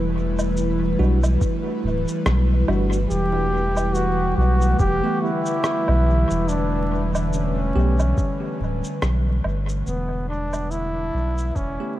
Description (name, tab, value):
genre	ambient dub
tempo	71 BPM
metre	4/4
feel	swing 57% on 16ths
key	unclear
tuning	A4 = 440 Hz
part	airy breathy pad	sustained chords	0.0-12.0 s	D3 to B4	-26 LUFS	equal	chorus
part	soft dub sub bass	bass	0.0-11.8 s	D1 to B1	-21 LUFS	equal	none
part	electronic shaker, woodblock and rim click	drums	0.4-11.8 s	none	-30 LUFS	right 1 dB	small room ambience, dub echo
part	bell-like tine electric piano	stabs	1.0-12.0 s	G3 to G4	-30 LUFS	right 1 dB	fast stereo tremolo, dub echo
part	electronic kick drum	drums	1.4-11.8 s	none	-23 LUFS	equal	small room ambience
part	clear trombone	melody	3.1-12.0 s	B3 to G4	-25 LUFS	equal	dub echo
room	light reverb, digital ambience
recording	vinyl crackle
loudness	-19 LUFS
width	side -14 dB against mid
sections	0.0-12.0 A section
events	fade-out 7.6-12.0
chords	0.0 Em7; 3.1 Gadd9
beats	0.57 1.42 2.26 | 3.11 3.95 4.80 5.64 | 6.49 7.33 8.18 9.02 | 9.87 10.71 11.56